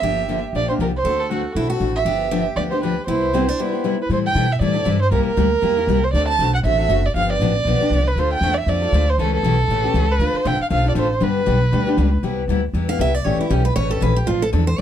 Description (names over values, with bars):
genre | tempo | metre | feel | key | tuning
acoustic string swing (jazz manouche) | 236 BPM | 4/4 | swing 57% on 8ths | C major | A4 = 440 Hz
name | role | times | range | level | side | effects
warm violin | melody | 0.0-12.1 s | F#4 to A5 | -21 LUFS | right 4 dB | none
picked steel-string acoustic guitar | second line | 0.0-4.0, 12.9-14.8 s | C4 to F5 | -25 LUFS | right 3 dB | none
picked steel-string acoustic guitar | accompaniment | 0.0-14.8 s | C3 to A4 | -22 LUFS | left 5 dB | none
upright bass | bass | 0.0-14.8 s | F#1 to B2 | -20 LUFS | equal | none
room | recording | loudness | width
light reverb | dark, warm production | -16 LUFS | side -10 dB against mid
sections
0.0-4.1 A section; 4.1-12.2 B section; 12.2-14.8 C section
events
break 3.6-4.1; steel-string acoustic guitar solo 12.2-14.8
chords
0.0 Gm7; 1.0 D7; 2.1 G7; 3.1 Cmaj7; 4.1 Am7; 5.1 C7; 6.1 D7; 7.2 G7; 8.2 Dm7; 9.2 A7; 10.2 Dm7; 11.2 G; 12.2 Cmaj7; 13.3 A7; 14.3 Dm7/A